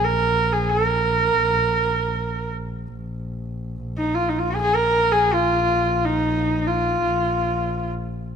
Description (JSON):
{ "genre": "mongolian traditional, Mongolian folk", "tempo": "free time", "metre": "none", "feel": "none", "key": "unclear", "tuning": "A4 = 439 Hz", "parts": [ { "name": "clear horsehead fiddle", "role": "melody", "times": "0.0-7.9 s", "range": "Eb4 to Bb4", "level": "-19 LUFS", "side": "right 1 dB", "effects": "none" }, { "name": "warm double bass", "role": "drone", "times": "0.0-8.4 s", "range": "Bb1", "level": "-26 LUFS", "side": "right 1 dB", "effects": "none" } ], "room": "moderate scoring stage reverb, RT60 1.9 s", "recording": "close, detailed microphones", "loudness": "-19 LUFS", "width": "side -7 dB against mid", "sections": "0.0-8.4 A section", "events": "none", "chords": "none" }